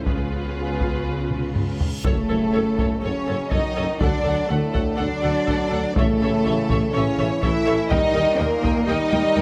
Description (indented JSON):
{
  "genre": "cinematic, epic orchestral film score",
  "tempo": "123 BPM",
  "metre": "4/4",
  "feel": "straight",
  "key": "unclear",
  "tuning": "A4 = 443 Hz",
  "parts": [
    { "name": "rich symphonic violin section", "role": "melody", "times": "0.0-9.4 s", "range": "B4 to G5", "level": "-37 LUFS", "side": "equal", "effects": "none" },
    { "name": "warm symphonic violin section", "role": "second line", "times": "0.0-9.4 s", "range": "G#4 to E5", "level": "-30 LUFS", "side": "equal", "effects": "none" },
    { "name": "rich symphonic viola section", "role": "accompaniment", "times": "0.0-9.4 s", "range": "E#4 to D#5", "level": "-34 LUFS", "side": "equal", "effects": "none" },
    { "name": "warm French horn section", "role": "sustained chords", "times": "0.0-9.4 s", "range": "C#3 to E#4", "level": "-32 LUFS", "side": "equal", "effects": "none" },
    { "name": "rich symphonic cello section", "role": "bass", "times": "0.0-9.4 s", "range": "C#3 to E4", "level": "-27 LUFS", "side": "equal", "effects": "none" },
    { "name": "warm symphonic double bass section", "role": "bass", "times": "0.0-9.4 s", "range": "A1 to F#2", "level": "-31 LUFS", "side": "equal", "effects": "none" },
    { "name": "solo taiko drums", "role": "drums", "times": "0.1-9.4 s", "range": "none", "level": "-28 LUFS", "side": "equal", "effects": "none" },
    { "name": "reverse cymbal and impact", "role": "sound effects", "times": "1.6-4.0 s", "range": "none", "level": "-38 LUFS", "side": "equal", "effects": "none" },
    { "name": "clear trombone section", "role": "sustained chords", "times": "2.1-9.4 s", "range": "A2 to E3", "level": "-32 LUFS", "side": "equal", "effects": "none" },
    { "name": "mellow tuba", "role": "bass", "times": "2.1-9.4 s", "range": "F#1 to D#2", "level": "-32 LUFS", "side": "equal", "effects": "none" }
  ],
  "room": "moderate scoring stage reverb, RT60 1.8 s",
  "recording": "close, detailed microphones",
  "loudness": "-22 LUFS",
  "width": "mono",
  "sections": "0.0-2.1 A section; 2.1-9.4 B section",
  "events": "build-up 0.0-2.1; drum fill 1.3-2.1, 9.1; reverse cymbal 1.6-2.1; impact 2.1-4.0",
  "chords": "0.1 C#7; 2.1 F#m; 4.0 D; 6.0 A; 7.9 D#",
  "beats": "| 0.07 0.57 1.07 1.56 | 2.06 2.55 3.04 3.52 | 4.01 4.50 4.99 5.48 | 5.97 6.46 6.95 7.43 | 7.91 8.40 8.89 9.37"
}